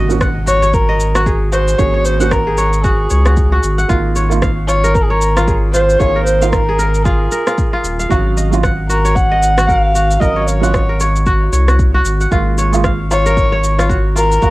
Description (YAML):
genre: organic downtempo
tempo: 114 BPM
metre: 4/4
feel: swing 58% on 16ths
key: unclear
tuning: A4 = 439 Hz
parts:
  - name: felt-muted upright piano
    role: accompaniment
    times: 0.0-14.5 s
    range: Gb3 to F5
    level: -21 LUFS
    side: right 8 dB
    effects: sidechain pumping, cassette tape, tape echo
  - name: kora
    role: arpeggios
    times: 0.0-14.5 s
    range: F4 to Gb5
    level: -19 LUFS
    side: equal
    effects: cassette tape, tape echo
  - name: round analog bass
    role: bass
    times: 0.0-14.5 s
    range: Eb1 to Db2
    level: -15 LUFS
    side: equal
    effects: tube saturation, sidechain pumping
  - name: impact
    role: sound effects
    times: 0.0-1.8 s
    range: none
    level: -28 LUFS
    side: equal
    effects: none
  - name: electronic cabasa and rim click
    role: drums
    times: 0.1-14.5 s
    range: none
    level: -22 LUFS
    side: equal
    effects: cassette tape
  - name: electronic kick drum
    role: drums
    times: 0.2-14.5 s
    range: none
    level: -17 LUFS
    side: equal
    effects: cassette tape
  - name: dark kamancheh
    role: melody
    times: 0.5-14.5 s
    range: Ab4 to Gb5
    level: -16 LUFS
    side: equal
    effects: cassette tape, tape echo
room: light reverb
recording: home recording on cassette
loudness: -11 LUFS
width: side -19 dB against mid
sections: 0.0-14.5 A section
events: impact 0.0-1.8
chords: 0.0 Ab7sus4; 3.9 Db6/Ab; 8.1 Ebm7/Ab; 12.3 Gbmaj7/Ab